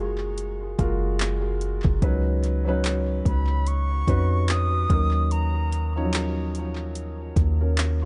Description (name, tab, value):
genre	contemporary R&B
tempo	73 BPM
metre	4/4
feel	swing 58% on 16ths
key	Eb minor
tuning	A4 = 438 Hz
part	felt-muted upright piano	accompaniment	0.0-8.1 s	F3 to Db5	-31 LUFS	equal	tape echo
part	soft 808-style bass	bass	0.0-8.1 s	Gb1 to F2	-26 LUFS	equal	none
part	smooth R&B drum kit	drums	0.4-8.0 s	handclaps, hi-hat, kick drum	-28 LUFS	equal	overdrive
part	silver concert flute	melody	3.3-6.1 s	Bb5 to Eb6	-33 LUFS	equal	tape echo
room	little or no reverb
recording	echo-heavy mix, nothing above 10.3 kHz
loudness	-24 LUFS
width	mono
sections	0.0-8.1 A section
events	none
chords	0.0 Gbmaj9; 2.0 Db9sus4; 4.9 Ebm7